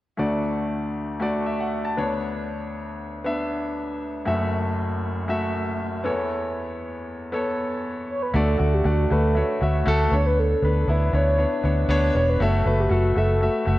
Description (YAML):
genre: pop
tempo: 118 BPM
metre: 4/4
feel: straight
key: D major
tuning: A4 = 440 Hz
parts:
  - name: clear grand piano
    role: accompaniment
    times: 0.2-13.8 s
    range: F#1 to A5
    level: -24 LUFS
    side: left 1 dB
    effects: none
  - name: mellow horn-like synth lead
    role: melody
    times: 8.1-13.7 s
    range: F#4 to C#5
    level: -25 LUFS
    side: right 1 dB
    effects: chorus
  - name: vintage muted fingered electric bass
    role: bass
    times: 8.3-13.8 s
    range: E1 to D2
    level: -21 LUFS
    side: equal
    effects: none
room: moderate lush hall reverb, RT60 2.2 s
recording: worn, warbling old tape, cassette tape, warbly pitch drift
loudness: -21 LUFS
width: side -16 dB against mid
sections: 0.2-8.3 A section; 8.3-13.8 B section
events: none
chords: 0.2 D; 2.0 Bmadd9/D; 4.3 F#m7; 6.0 Aadd9/E; 8.3 D; 10.1 Bmadd9/D; 12.4 F#m7